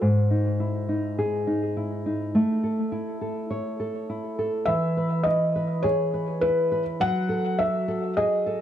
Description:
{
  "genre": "folktronica",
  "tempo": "103 BPM",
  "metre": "4/4",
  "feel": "straight",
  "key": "E major",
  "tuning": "A4 = 440 Hz",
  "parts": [
    { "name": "nylon-string guitar", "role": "arpeggios", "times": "0.0-8.6 s", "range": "G#2 to C#5", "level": "-24 LUFS", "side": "equal", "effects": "low-pass filter, digital delay" },
    { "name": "felt-muted upright piano", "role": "melody", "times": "4.7-8.6 s", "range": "B4 to F#5", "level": "-24 LUFS", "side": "left 1 dB", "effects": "digital delay" }
  ],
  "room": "wet studio reverb, RT60 0.5 s",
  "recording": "none",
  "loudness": "-23 LUFS",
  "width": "side -10 dB against mid",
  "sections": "0.0-8.6 A section",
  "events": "filter sweep on nylon-string guitar 0.0-8.6",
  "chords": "0.0 Emaj7/G#; 2.3 A; 4.7 E6; 7.0 F#madd9"
}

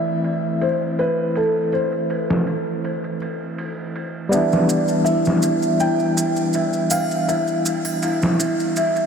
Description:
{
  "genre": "trip hop",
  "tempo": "81 BPM",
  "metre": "4/4",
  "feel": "straight",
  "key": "E minor",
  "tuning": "A4 = 441 Hz",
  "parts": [
    { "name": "felt-muted upright piano", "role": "melody", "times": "0.0-8.4 s", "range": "A4 to G5", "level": "-24 LUFS", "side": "left 1 dB", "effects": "tape echo" },
    { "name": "barky tine electric piano", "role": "accompaniment", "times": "0.0-9.1 s", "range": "E3 to E4", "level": "-23 LUFS", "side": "equal", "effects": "medium stereo tremolo, tape echo" },
    { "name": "trip hop sampler-style drum kit", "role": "drums", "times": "0.2-9.1 s", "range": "hi-hat, ride cymbal, snare drum", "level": "-27 LUFS", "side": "right 1 dB", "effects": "low-pass filter on cymbals, studio reverb, low-pass filter on snare, low-pass filter on hats" },
    { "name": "large celesta", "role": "arpeggios", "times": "4.3-9.1 s", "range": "E4 to E5", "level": "-22 LUFS", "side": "equal", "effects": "lush chorus, tape echo" },
    { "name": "maracas and triangle", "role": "percussion", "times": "4.3-9.1 s", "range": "none", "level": "-29 LUFS", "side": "right 2 dB", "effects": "none" }
  ],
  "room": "wet huge ambient reverb, RT60 7.5 s",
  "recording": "dreamy mix soaked in reverb",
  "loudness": "-18 LUFS",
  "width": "side -6 dB against mid",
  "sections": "0.0-9.1 A section",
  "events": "filter sweep on tine electric piano 0.0-9.1",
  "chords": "0.0 Am/E; 4.3 Em7"
}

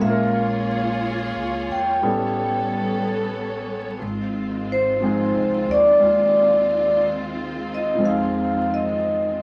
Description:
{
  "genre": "jazz ballad",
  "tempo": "60 BPM",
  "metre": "4/4",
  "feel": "swing 67% on 8ths",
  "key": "unclear",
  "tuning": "A4 = 440 Hz",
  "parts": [
    { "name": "vibraphone with medium hard mallets", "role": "melody", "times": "0.0-9.4 s", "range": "C5 to G5", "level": "-22 LUFS", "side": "equal", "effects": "none" },
    { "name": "warm concert grand piano", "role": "accompaniment", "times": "0.0-9.4 s", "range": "F3 to Bb4", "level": "-27 LUFS", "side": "equal", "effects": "none" },
    { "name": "warm symphonic string section", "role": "sustained chords", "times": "0.0-9.4 s", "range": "Eb3 to C#5", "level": "-30 LUFS", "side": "equal", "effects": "none" },
    { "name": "upright bass", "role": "bass", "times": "0.0-9.4 s", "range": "Ab1 to F2", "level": "-35 LUFS", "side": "equal", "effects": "none" }
  ],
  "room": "wet studio ambience, RT60 0.5 s",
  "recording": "vinyl crackle",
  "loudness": "-21 LUFS",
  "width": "mono",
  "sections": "0.0-9.4 A section",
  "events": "none",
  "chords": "0.0 Bbm7; 2.0 A9; 4.0 Ab6; 8.0 Fm7"
}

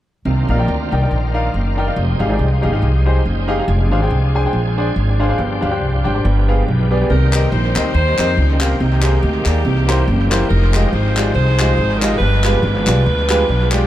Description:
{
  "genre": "uptempo gospel",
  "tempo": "141 BPM",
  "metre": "4/4",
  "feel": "swing 55% on 8ths",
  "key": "C minor",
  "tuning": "A4 = 440 Hz",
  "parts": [
    { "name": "clear baby grand piano", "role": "accompaniment", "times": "0.3-13.9 s", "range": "G2 to Ab5", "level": "-20 LUFS", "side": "equal", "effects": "analog delay" },
    { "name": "bright tonewheel organ", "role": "sustained chords", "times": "0.3-13.9 s", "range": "Eb3 to G5", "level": "-26 LUFS", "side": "right 2 dB", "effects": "slow rotary speaker, overdrive, chorus vibrato" },
    { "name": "upright bass", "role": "bass", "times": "0.3-13.8 s", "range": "F1 to F2", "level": "-16 LUFS", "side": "equal", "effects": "none" },
    { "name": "warm saxophone section", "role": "melody", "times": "7.1-13.9 s", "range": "Bb3 to C5", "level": "-20 LUFS", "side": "equal", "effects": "analog delay" },
    { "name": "group handclap", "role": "percussion", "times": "7.3-13.8 s", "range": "none", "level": "-25 LUFS", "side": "left 3 dB", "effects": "analog delay" }
  ],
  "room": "light reverb",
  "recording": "echo-heavy mix",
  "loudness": "-14 LUFS",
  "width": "side -13 dB against mid",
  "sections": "0.3-7.1 A section; 7.1-13.9 B section",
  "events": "none",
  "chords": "0.3 Cm11; 2.0 Fm9; 3.7 Dm7b5/F; 5.4 G7sus4; 6.2 G7b9; 7.1 Cm7; 8.8 Abmaj9/C; 9.6 C7; 10.5 Fm9; 12.2 G7b9"
}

